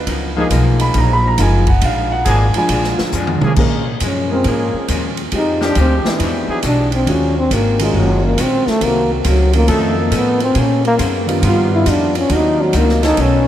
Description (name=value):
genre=jazz, big band swing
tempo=138 BPM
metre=4/4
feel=swing 67% on 8ths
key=Bb minor from 3.6 s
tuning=A4 = 440 Hz
part: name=upright bass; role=bass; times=0.0-13.5 s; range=Gb1 to Bb2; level=-17 LUFS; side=equal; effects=none
part: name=archtop guitar, miked and amplified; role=accompaniment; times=0.1-13.5 s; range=F2 to C5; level=-26 LUFS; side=left 5 dB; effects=none
part: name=swinging big-band drum kit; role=drums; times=0.1-13.3 s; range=crash cymbal, hi-hat, kick drum, ride cymbal, snare drum, toms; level=-22 LUFS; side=right 2 dB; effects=none
part: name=dark concert grand piano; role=accompaniment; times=0.4-13.0 s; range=Eb3 to Cb6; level=-20 LUFS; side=equal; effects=none
part: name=bright trombone section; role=sustained chords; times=0.4-6.6, 9.7-13.5 s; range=Eb3 to A4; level=-26 LUFS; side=left 1 dB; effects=none
part: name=dark trombone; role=melody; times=4.0-13.5 s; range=Eb3 to F4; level=-16 LUFS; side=equal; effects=none
room=wet cathedral reverb, RT60 6.8 s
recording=in a vast, echoing space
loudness=-13 LUFS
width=side -11 dB against mid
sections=0.0-3.6 A section; 3.6-13.5 A section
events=grand piano solo 0.0-3.6; drum fill 3.1-3.6; trombone solo 3.6-13.5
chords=0.1 Gbmaj13; 1.8 Bb7; 3.6 Bbm7; 5.3 Fm9; 6.2 E9; 7.1 Ebm11; 8.8 Cm7b5; 9.7 F7b13; 10.6 Bbm9; 11.4 G7b13; 12.3 Cm7b5